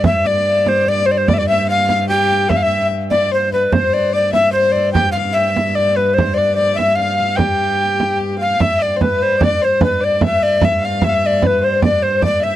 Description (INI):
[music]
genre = medieval dance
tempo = 148 BPM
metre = 3/4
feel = straight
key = G mixolydian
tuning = A4 = 443 Hz
[part]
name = breathy tenor recorder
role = melody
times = 0.0-12.6 s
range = B4 to G5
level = -15 LUFS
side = equal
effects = tape echo
[part]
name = warm viola da gamba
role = second line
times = 0.0-12.6 s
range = G4 to F5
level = -21 LUFS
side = left 6 dB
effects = none
[part]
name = rich viola da gamba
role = drone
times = 0.0-12.6 s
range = G2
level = -23 LUFS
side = equal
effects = stereo widening
[part]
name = frame drum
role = percussion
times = 0.0-12.4 s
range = none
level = -18 LUFS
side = right 3 dB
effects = none
[sound]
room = little or no reverb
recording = dry, close 1970s-style studio recording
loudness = -13 LUFS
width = side -13 dB against mid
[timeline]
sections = 0.0-8.6 A section; 8.6-12.6 B section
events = none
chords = none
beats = | 0.04 0.45 0.86 | 1.27 1.68 2.09 | 2.50 2.91 3.32 | 3.73 4.14 4.54 | 4.95 5.36 5.76 | 6.17 6.58 6.98 | 7.39 7.79 8.20 | 8.60 9.01 9.41 | 9.82 10.22 10.62 | 11.03 11.43 11.83 | 12.23